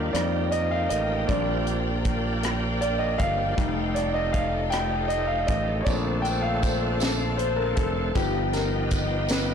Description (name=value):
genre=slow gospel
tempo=52 BPM (dotted quarters)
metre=6/8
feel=straight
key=Bb major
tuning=A4 = 435 Hz
part: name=clear grand piano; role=accompaniment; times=0.0-9.5 s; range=F3 to G5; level=-27 LUFS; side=left 2 dB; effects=none
part: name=bright tonewheel organ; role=sustained chords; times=0.0-9.5 s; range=D3 to A4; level=-32 LUFS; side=right 4 dB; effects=fast rotary speaker, overdrive, chorus vibrato
part: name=warm symphonic string section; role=sustained chords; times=0.0-9.5 s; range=B3 to A5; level=-34 LUFS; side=left 3 dB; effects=none
part: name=modern bright fingered electric bass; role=bass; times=0.0-9.5 s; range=F1 to F2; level=-28 LUFS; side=right 1 dB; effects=transformer saturation
part: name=tight funk drum kit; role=drums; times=0.1-9.5 s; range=hi-hat, kick drum, rim click, snare drum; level=-29 LUFS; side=equal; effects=soft clipping on kick, soft clipping on snare
part: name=tambourine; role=percussion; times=5.9-9.5 s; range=none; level=-37 LUFS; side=right 4 dB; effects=none
room=light reverb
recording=blown-out, overdriven recording, overdrive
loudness=-23 LUFS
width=side -7 dB against mid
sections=0.0-9.5 A section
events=grand piano solo 0.0-9.5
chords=0.1 F9sus4; 1.3 Bb6; 3.6 F9; 5.9 Bbmaj9; 8.2 G7alt